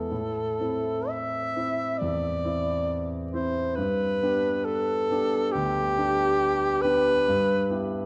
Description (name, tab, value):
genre	classical, romantic duo for alto saxophone and grand piano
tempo	68 BPM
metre	4/4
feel	rubato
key	A minor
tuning	A4 = 441 Hz
part	clear alto saxophone	melody	0.0-7.9 s	G4 to E5	-28 LUFS	equal	none
part	warm concert grand piano	accompaniment	0.0-8.1 s	D2 to G4	-31 LUFS	equal	none
room	moderate concert hall reverb, RT60 1.9 s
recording	dark, warm production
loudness	-26 LUFS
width	mono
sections	0.1-8.1 A section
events	none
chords	0.1 Am; 3.8 G; 7.3 Em/G